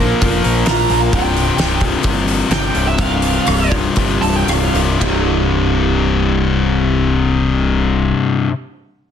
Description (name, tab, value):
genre	quiet-loud alternative rock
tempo	112-132 BPM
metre	4/4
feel	straight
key	C mixolydian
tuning	A4 = 441 Hz
part	electric guitar through a small old amp	arpeggios	0.0-8.5 s	C2 to Bb4	-22 LUFS	right 5 dB	none
part	distorted electric guitar	riff	0.0-8.5 s	C2 to Bb3	-16 LUFS	left 6 dB	distortion
part	growling picked electric bass	bass	0.0-8.1 s	C1 to Bb1	-19 LUFS	equal	overdrive
part	loose indie drum kit	drums	0.2-5.1 s	hi-hat, kick drum, ride cymbal, rim click, snare drum	-20 LUFS	equal	none
part	high-gain lead guitar	melody	0.7-4.8 s	E5 to Bb5	-21 LUFS	right 6 dB	distortion, analog delay
room	light reverb, studio reverb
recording	dense, heavily limited modern master, lossy compression artefacts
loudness	-13 LUFS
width	side -8 dB against mid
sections	0.0-5.0 A section; 5.0-9.1 B section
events	lead electric guitar solo 0.0-5.0; slowing down 1.1-5.0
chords	0.0 Bb; 1.1 Csus4; 5.0 C